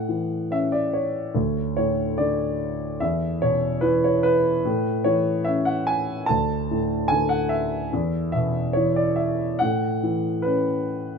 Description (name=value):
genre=classical, lyrical solo piano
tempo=73 BPM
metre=4/4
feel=rubato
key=A major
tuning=A4 = 443 Hz
part: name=dark grand piano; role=solo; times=0.0-11.2 s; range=D2 to A5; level=-21 LUFS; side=equal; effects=none
room=light reverb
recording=close, detailed microphones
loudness=-21 LUFS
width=side -5 dB against mid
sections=0.0-11.2 A section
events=none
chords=0.0 A; 1.3 D5; 3.0 E5; 4.6 A; 6.3 D5; 7.9 E5; 9.6 A6